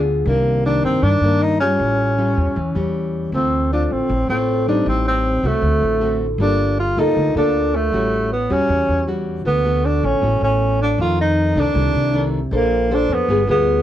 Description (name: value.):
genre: bossa nova.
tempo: 157 BPM.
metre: 4/4.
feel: straight.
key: unclear.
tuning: A4 = 439 Hz.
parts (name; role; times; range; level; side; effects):
breathy tenor saxophone; melody; 0.0-13.8 s; A3 to F4; -19 LUFS; equal; none.
nylon-string guitar; accompaniment; 0.0-13.8 s; F2 to C5; -21 LUFS; left 1 dB; none.
upright bass; bass; 0.0-13.8 s; G1 to G2; -21 LUFS; equal; none.
room: light reverb.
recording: worn, warbling old tape, cassette tape, warbly pitch drift.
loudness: -16 LUFS.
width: side -11 dB against mid.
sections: 0.0-13.8 A section.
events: none.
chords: 0.3 Cm9; 1.8 A7b13; 3.3 Dm7; 4.9 Am7b5; 5.6 D7; 6.4 Gm9; 7.9 A6; 9.5 D6; 11.0 F6; 12.5 Bbmaj9; 13.3 G7b9.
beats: | 0.26 0.65 1.03 1.41 | 1.80 2.18 2.56 2.95 | 3.33 3.71 4.10 4.48 | 4.86 5.25 5.63 6.01 | 6.39 6.78 7.16 7.54 | 7.93 8.31 8.69 9.07 | 9.46 9.84 10.22 10.60 | 10.99 11.37 11.75 12.13 | 12.52 12.90 13.28 13.66.